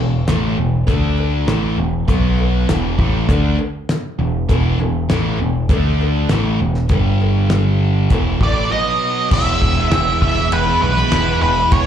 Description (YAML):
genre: classic rock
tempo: 100 BPM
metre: 4/4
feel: straight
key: unclear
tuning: A4 = 439 Hz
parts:
  - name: distorted electric guitar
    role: riff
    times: 0.0-11.9 s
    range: E2 to E4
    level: -23 LUFS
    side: left 11 dB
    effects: distortion, slapback echo
  - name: sludgy distorted guitar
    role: riff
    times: 0.0-11.9 s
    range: E2 to E4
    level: -22 LUFS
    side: right 11 dB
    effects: overdrive
  - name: growling picked electric bass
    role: bass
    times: 0.0-11.9 s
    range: E1 to D2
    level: -18 LUFS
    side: equal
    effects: overdrive
  - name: damped 70s drum kit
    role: drums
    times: 0.3-11.9 s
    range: crash cymbal, hi-hat, kick drum, ride cymbal, snare drum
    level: -19 LUFS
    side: equal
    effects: none
  - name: cowbell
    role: percussion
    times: 0.3-8.6 s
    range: none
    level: -30 LUFS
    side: left 6 dB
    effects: none
  - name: octave-fuzz lead guitar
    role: melody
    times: 8.4-11.9 s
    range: B4 to E5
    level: -17 LUFS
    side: right 1 dB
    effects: wah, distortion, slapback echo, analog delay
room: light reverb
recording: live gig heard through the venue's PA, club reverb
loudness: -14 LUFS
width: side -9 dB against mid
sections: 0.0-9.3 A section; 9.3-11.9 B section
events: none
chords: 0.0 E5; 0.9 D5; 1.5 E5; 2.1 B5; 2.7 E5; 5.7 D5; 6.3 E5; 6.9 G5; 8.1 E5; 8.7 B5; 9.3 E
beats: 0.27 0.87 1.48 | 2.08 2.68 3.28 3.89 | 4.49 5.09 5.70 6.30 | 6.90 7.51 8.11 8.71 | 9.31 9.92 10.52 11.12 | 11.72